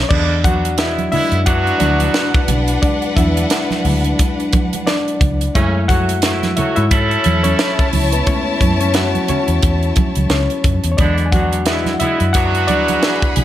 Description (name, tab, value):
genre	lush 1970s-style soul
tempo	88 BPM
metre	4/4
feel	swing 58% on 16ths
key	unclear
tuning	A4 = 440 Hz
part	barky reed electric piano	accompaniment	0.0-13.4 s	F#3 to G#5	-20 LUFS	left 3 dB	overdrive
part	vintage muted fingered electric bass	bass	0.0-13.4 s	B1 to G#2	-18 LUFS	equal	none
part	clear horn section	stabs	0.1-13.3 s	C#3 to A4	-20 LUFS	right 2 dB	slapback echo
part	tight funk drum kit	drums	0.1-13.4 s	crash cymbal, hi-hat, kick drum, snare drum	-18 LUFS	equal	none
part	congas	percussion	0.1-13.4 s	none	-24 LUFS	right 4 dB	none
part	warm symphonic violin section	second line	1.5-13.4 s	D4 to B5	-23 LUFS	left 1 dB	none
room	light reverb, studio reverb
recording	none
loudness	-13 LUFS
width	side -12 dB against mid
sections	0.1-13.4 A section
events	reed electric piano solo 0.1-13.4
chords	0.1 E9; 5.5 F#m9; 11.0 E9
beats	| 0.10 0.78 1.47 2.15 | 2.83 3.51 4.19 4.87 | 5.55 6.23 6.91 7.59 | 8.27 8.95 9.63 10.31 | 10.99 11.67 12.35 13.03